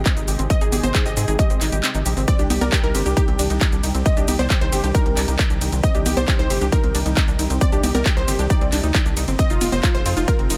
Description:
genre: uplifting trance.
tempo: 135 BPM.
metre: 4/4.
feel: straight.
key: C minor.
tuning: A4 = 443 Hz.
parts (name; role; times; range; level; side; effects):
unison pluck; melody; 0.0-10.6 s; F4 to Eb5; -29 LUFS; equal; sidechain pumping, digital delay.
clear concert grand piano; second line; 0.0-10.6 s; F4 to Eb5; -34 LUFS; equal; none.
analog string pad; sustained chords; 0.0-10.6 s; C3 to G4; -33 LUFS; equal; ensemble chorus, sidechain pumping.
tight sequenced synth; arpeggios; 0.0-10.5 s; C4 to Eb5; -32 LUFS; equal; chorus, sidechain pumping, digital delay.
tight sequencer bass; bass; 0.0-10.6 s; F1 to Ab2; -25 LUFS; equal; sidechain pumping.
electronic kick drum; drums; 0.1-10.4 s; none; -21 LUFS; equal; none.
punchy analog drum machine; drums; 0.1-10.6 s; congas, handclaps, hi-hat, ride cymbal, shaker; -27 LUFS; equal; sidechain pumping on hats, sidechain pumping on perc, sidechain pumping on cymbals.
room: digital ambience.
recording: none.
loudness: -19 LUFS.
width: mono.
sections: 0.0-10.6 A section.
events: kick drops out 1.8-2.3.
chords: 0.0 Abmaj7; 2.3 Cmadd9; 9.4 Fm7.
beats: 0.06 | 0.50 0.95 1.39 1.83 | 2.28 2.72 3.17 3.61 | 4.06 4.50 4.95 5.39 | 5.83 6.28 6.72 7.17 | 7.61 8.06 8.50 8.95 | 9.39 9.84 10.28.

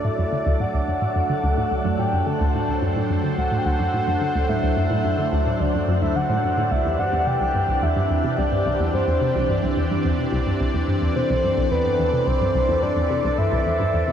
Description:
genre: ambient, sequencer-driven space music.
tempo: 108 BPM.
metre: 4/4.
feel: straight.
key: unclear.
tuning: A4 = 440 Hz.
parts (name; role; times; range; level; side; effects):
soft octave-layered synth lead; melody; 0.0-14.1 s; B4 to A5; -24 LUFS; equal; chorus, tape echo.
phased analog pad; sustained chords; 0.0-14.1 s; E3 to D5; -25 LUFS; equal; phaser, chorus.
resonant blip pluck; riff; 0.0-14.1 s; C2 to D3; -23 LUFS; equal; chorus, tape echo.
room: wet shimmer reverb, RT60 8.4 s.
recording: dark, warm production.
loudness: -19 LUFS.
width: side -8 dB against mid.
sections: 0.0-14.1 A section.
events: none.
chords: 0.0 D; 6.7 Cadd9.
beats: | 0.05 0.60 1.16 1.71 | 2.27 2.83 3.38 3.94 | 4.49 5.05 5.60 6.16 | 6.71 7.27 7.83 8.38 | 8.94 9.49 10.05 10.60 | 11.16 11.71 12.27 12.82 | 13.38 13.94.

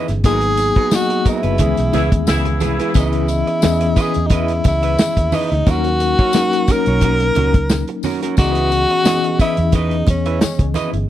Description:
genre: lush 1970s-style soul.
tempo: 88 BPM.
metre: 4/4.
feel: swing 54% on 16ths.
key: C# dorian.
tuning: A4 = 440 Hz.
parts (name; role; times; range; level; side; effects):
mellow tine electric piano; accompaniment; 0.0-11.1 s; D#3 to D#5; -22 LUFS; left 3 dB; medium stereo tremolo.
electric guitar through a small old amp; riff; 0.0-11.0 s; B3 to E5; -25 LUFS; right 8 dB; none.
vintage muted fingered electric bass; bass; 0.1-11.1 s; F#1 to E2; -19 LUFS; equal; none.
warm soul drum kit; drums; 0.1-11.1 s; hi-hat, kick drum, snare drum; -16 LUFS; equal; none.
tambourine; percussion; 0.2-10.9 s; none; -33 LUFS; left 16 dB; none.
breathy tenor saxophone; melody; 0.3-10.7 s; C#4 to A#4; -19 LUFS; left 1 dB; none.
congas; percussion; 0.9-10.9 s; none; -26 LUFS; right 5 dB; none.
clear horn section; stabs; 1.9-2.9 s; C#3 to E4; -22 LUFS; left 2 dB; none.
room: studio ambience.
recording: dry, close 1970s-style studio recording.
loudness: -14 LUFS.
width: side -12 dB against mid.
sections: 0.0-3.0 A section; 3.0-11.1 A section.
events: band accent 0.2-3.0.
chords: 0.2 G#m9; 1.6 C#m7; 3.0 C#m9; 5.7 D#m7; 8.4 C#m9.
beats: | 0.24 0.92 1.60 2.28 | 2.95 3.63 4.31 4.99 | 5.67 6.34 7.02 7.70 | 8.38 9.06 9.74 10.42.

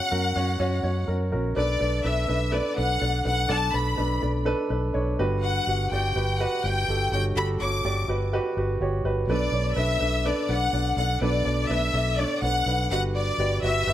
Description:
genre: piano-driven pop.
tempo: 124 BPM.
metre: 4/4.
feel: straight.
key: B minor.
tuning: A4 = 438 Hz.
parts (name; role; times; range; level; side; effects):
clear studio violin section; melody; 0.0-13.9 s; D5 to D6; -27 LUFS; left 2 dB; none.
dark upright piano; accompaniment; 0.0-13.9 s; G2 to D5; -28 LUFS; right 1 dB; none.
vintage muted fingered electric bass; bass; 0.1-13.9 s; G1 to F#2; -27 LUFS; equal; none.
room: light reverb, small room ambience.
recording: faint mains hum.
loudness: -22 LUFS.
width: side -12 dB against mid.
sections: 0.0-1.6 A section; 1.6-13.9 B section.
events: none.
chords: 0.0 F#; 1.6 Bm7; 5.2 Gmaj7; 9.3 Bm7; 12.9 Gmaj7.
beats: 0.12 0.61 1.09 | 1.57 2.06 2.54 3.02 | 3.50 3.98 4.47 4.95 | 5.43 5.92 6.40 6.88 | 7.36 7.84 8.33 8.81 | 9.29 9.77 10.26 10.74 | 11.22 11.70 12.19 12.67 | 13.15 13.63.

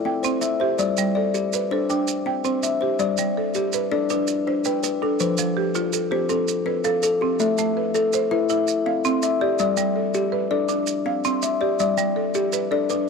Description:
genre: southern african traditional, mbira-style interlocking cycle.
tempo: 109 BPM (dotted quarters).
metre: 12/8.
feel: straight.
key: G mixolydian.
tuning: A4 = 440 Hz.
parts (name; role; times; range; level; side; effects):
buzzing marimba with medium mallets; arpeggios; 0.0-13.1 s; F3 to G5; -25 LUFS; right 12 dB; none.
kalimba; arpeggios; 0.0-13.1 s; F3 to C6; -22 LUFS; left 7 dB; none.
maracas; percussion; 0.2-13.1 s; none; -30 LUFS; right 12 dB; none.
room: light reverb, small room ambience.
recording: 1960s-style stereo with parts hard left and right.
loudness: -20 LUFS.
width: side -5 dB against mid.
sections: 0.0-3.0 A section; 3.0-13.1 B section.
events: none.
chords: 0.0 C; 0.8 G; 1.9 C; 3.0 G; 5.2 F; 7.4 Am; 8.5 C; 9.6 G; 10.7 C; 11.8 G.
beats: 0.23 | 0.78 1.34 1.89 2.44 | 2.99 3.54 4.09 4.64 | 5.19 5.74 6.29 6.84 | 7.39 7.94 8.49 9.04 | 9.59 10.14 10.69 11.24 | 11.79 12.35 12.89.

